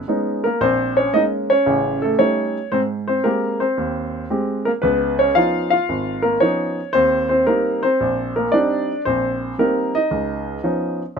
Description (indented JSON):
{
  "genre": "solo jazz",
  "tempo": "114 BPM",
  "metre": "4/4",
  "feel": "swing 68% on 8ths",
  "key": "unclear",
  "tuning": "A4 = 441 Hz",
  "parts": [
    { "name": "warm grand piano", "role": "solo", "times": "0.0-11.2 s", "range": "Ab1 to F5", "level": "-17 LUFS", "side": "equal", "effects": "none" }
  ],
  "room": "light reverb",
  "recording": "minimal, uncompressed stereo recording",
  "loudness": "-17 LUFS",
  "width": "side -6 dB against mid",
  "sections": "0.0-11.2 A section",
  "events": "none",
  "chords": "0.0 B69; 0.6 Bbm7; 1.7 A7#11; 2.7 Abmaj7; 4.8 Db9; 6.9 Eb6; 10.1 Db9",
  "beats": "0.08 | 0.61 1.13 1.66 2.19 | 2.72 3.25 3.77 4.30 | 4.83 5.36 5.88 6.41 | 6.94 7.47 8.00 8.53 | 9.05 9.58 10.11 10.64 | 11.17"
}